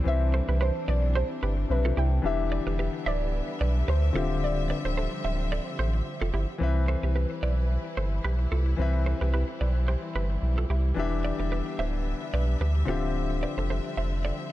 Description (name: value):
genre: afrobeats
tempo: 110 BPM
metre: 4/4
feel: swing 55% on 16ths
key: C major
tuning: A4 = 440 Hz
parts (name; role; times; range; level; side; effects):
- soft round pluck; melody; 0.0-6.0 s; B4 to G5; -34 LUFS; left 1 dB; chorus, phaser, ping-pong delay
- clear concert grand piano; accompaniment; 0.0-14.5 s; C3 to E5; -33 LUFS; left 6 dB; none
- warm studio string section; sustained chords; 0.0-14.5 s; D3 to E5; -36 LUFS; equal; none
- warm sub bass; bass; 0.1-14.3 s; D1 to D2; -26 LUFS; equal; none
- electric guitar at the edge of break-up; riff; 0.3-14.4 s; E4 to E5; -36 LUFS; right 4 dB; ping-pong delay
room: studio reverb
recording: dark, warm production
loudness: -25 LUFS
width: side -15 dB against mid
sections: 0.0-6.6 A section; 6.6-14.5 B section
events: none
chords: 0.0 Cmaj7; 2.2 Em7; 4.2 Dm11; 6.6 Cmaj7; 11.0 Em7; 12.9 Dm11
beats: | 0.06 0.61 1.15 1.70 | 2.24 2.79 3.33 3.88 | 4.42 4.97 5.52 6.06 | 6.61 7.15 7.70 8.24 | 8.79 9.33 9.88 10.43 | 10.97 11.52 12.06 12.61 | 13.15 13.70 14.24